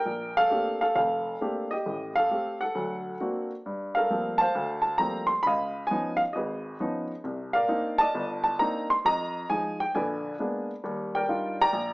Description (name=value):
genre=solo jazz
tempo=134 BPM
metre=4/4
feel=swing 66% on 8ths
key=unclear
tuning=A4 = 440 Hz
part: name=warm baby grand piano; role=solo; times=0.0-11.9 s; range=F1 to C6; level=-25 LUFS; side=equal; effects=none
room=moderate large studio reverb, RT60 0.8 s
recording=small speaker sound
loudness=-25 LUFS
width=side -23 dB against mid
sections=0.0-3.6 A section; 3.6-11.9 B section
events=none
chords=0.1 Bbmaj13; 1.9 Am7b5; 2.7 D7b13; 3.6 Gm11; 5.4 Db9; 7.2 Cm9; 9.0 Fm7; 9.9 Bb7b9; 10.8 Ebmaj9